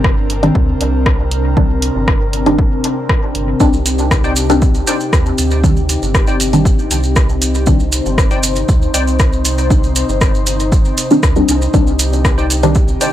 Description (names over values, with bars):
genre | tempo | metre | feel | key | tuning
dub techno | 118 BPM | 4/4 | straight | C minor | A4 = 440 Hz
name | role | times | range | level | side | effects
airy breathy pad | sustained chords | 0.0-13.1 s | C3 to C5 | -20 LUFS | left 1 dB | chorus, sidechain pumping
round analog bass | bass | 0.0-13.0 s | G1 to Eb2 | -18 LUFS | equal | transformer saturation, sidechain pumping
electronic kick drum | drums | 0.0-12.9 s | none | -14 LUFS | equal | none
punchy analog drum machine | drums | 0.0-13.1 s | hi-hat, rim click | -20 LUFS | left 1 dB | dub echo
filtered dub chord stab | stabs | 0.4-12.8 s | Eb3 to D4 | -17 LUFS | left 1 dB | phaser, sidechain pumping, dub echo
maracas | percussion | 3.6-13.1 s | none | -22 LUFS | right 3 dB | none
wavetable chord stab | riff | 4.2-9.0, 12.4-13.1 s | Eb4 to G5 | -23 LUFS | left 2 dB | sidechain pumping, dub echo
room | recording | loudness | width
little or no reverb | dry, gritty hardware recording, transformer saturation | -11 LUFS | side -12 dB against mid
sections
0.0-13.1 A section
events
none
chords
0.0 Cmadd9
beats
0.04 0.55 1.06 | 1.57 2.08 2.59 3.09 | 3.60 4.11 4.62 5.13 | 5.64 6.14 6.65 7.16 | 7.67 8.18 8.69 9.20 | 9.70 10.21 10.72 11.23 | 11.74 12.25 12.76